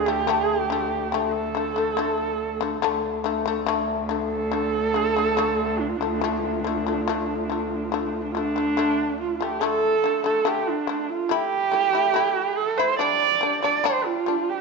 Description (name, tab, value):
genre	mongolian traditional, Mongolian folk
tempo	71 BPM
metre	4/4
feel	straight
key	D yu mode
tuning	A4 = 439 Hz
part	warm horsehead fiddle	melody	0.0-14.6 s	D4 to D5	-23 LUFS	right 7 dB	none
part	shamisen	arpeggios	0.0-14.6 s	D3 to E4	-25 LUFS	left 10 dB	none
part	rich cello	drone	0.0-9.7 s	D2	-31 LUFS	right 2 dB	stereo widening
room	wet echo chamber reverb, RT60 1.9 s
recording	1960s-style stereo with parts hard left and right, nothing above 7.8 kHz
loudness	-21 LUFS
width	side -3 dB against mid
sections	0.0-9.6 A section; 9.6-14.6 B section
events	none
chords	0.0 D5; 11.3 A5; 13.0 G5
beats	0.28 1.14 1.98 | 2.83 3.68 4.53 5.38 | 6.23 7.08 7.92 8.77 | 9.62 10.46 11.31 12.15 | 13.00 13.84